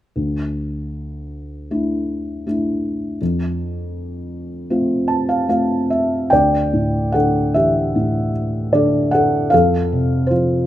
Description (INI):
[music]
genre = classical, lyrical solo piano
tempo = 77 BPM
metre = 4/4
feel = uneven beats, rubato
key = unclear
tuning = A4 = 440 Hz
[part]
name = felt-muted upright piano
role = solo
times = 0.2-10.7 s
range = D2 to A5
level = -16 LUFS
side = equal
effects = none
[sound]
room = light reverb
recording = close, detailed microphones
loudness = -16 LUFS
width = side -12 dB against mid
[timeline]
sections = 0.2-6.3 A section; 6.3-10.7 B section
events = felt piano fill 4.7-6.3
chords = 0.2 Dsus2; 3.2 F; 6.3 Dsus2; 9.5 F